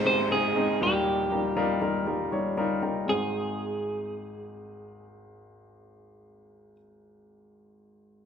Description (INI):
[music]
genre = piano-driven pop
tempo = 119 BPM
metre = 4/4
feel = straight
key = Ab major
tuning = A4 = 440 Hz
[part]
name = twelve-string electric guitar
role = melody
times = 0.0-6.8 s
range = G4 to C5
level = -28 LUFS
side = right 2 dB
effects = none
[part]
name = warm grand piano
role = accompaniment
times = 0.0-8.3 s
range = Ab1 to Bb5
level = -28 LUFS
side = left 2 dB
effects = none
[part]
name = downlifter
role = sound effects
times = 0.0-3.1 s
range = none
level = -36 LUFS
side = equal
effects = none
[sound]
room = moderate large studio reverb, RT60 1.2 s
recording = band playing live in one room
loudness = -25 LUFS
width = side -7 dB against mid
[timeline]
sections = 0.0-3.1 A section; 3.1-7.1 B section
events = grand piano fill 2.3-3.1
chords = 0.0 Ab; 0.8 Ebadd9; 3.1 Ab